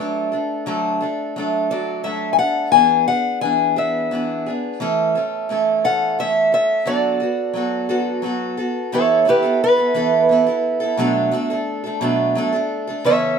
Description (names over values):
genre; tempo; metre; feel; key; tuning
acoustic folk duo or small band; 58 BPM (dotted quarters); 6/8; straight; E mixolydian; A4 = 437 Hz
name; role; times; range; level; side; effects
picked old ladder-braced acoustic guitar; melody; 0.0-13.4 s; G4 to G#5; -18 LUFS; left 3 dB; none
picked acoustic archtop guitar; accompaniment; 0.0-13.4 s; B2 to A4; -19 LUFS; right 2 dB; none
room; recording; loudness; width
light reverb; minimal, uncompressed stereo recording; -17 LUFS; side -6 dB against mid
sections
0.0-8.9 A section; 8.9-13.4 B section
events
steel-string acoustic guitar solo 8.9-13.4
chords
0.0 D; 2.7 E7; 4.8 A/E; 6.9 D6; 8.9 Esus4; 11.0 Bm7